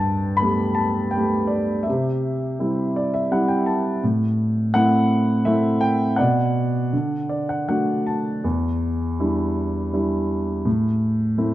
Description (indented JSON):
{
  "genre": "classical, lyrical solo piano",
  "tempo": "82 BPM",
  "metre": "3/4",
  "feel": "rubato",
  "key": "G major",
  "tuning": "A4 = 441 Hz",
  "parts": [
    { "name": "warm baby grand piano", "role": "solo", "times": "0.0-11.5 s", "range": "E2 to B5", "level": "-19 LUFS", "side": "equal", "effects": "none" }
  ],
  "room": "light reverb",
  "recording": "dark, warm production",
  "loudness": "-19 LUFS",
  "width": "side -14 dB against mid",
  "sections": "0.0-11.5 A section",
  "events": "grand piano fill 2.6-4.0, 6.9-8.4",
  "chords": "0.0 Gadd9; 1.9 C; 4.0 Am; 6.2 Bm; 6.9 D; 8.4 Em7; 10.7 Am",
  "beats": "0.40 1.15 | 1.88 2.60 3.31 | 4.02 4.74 5.46 | 6.19 6.93 7.68 | 8.45 9.20 9.94 | 10.66 11.38"
}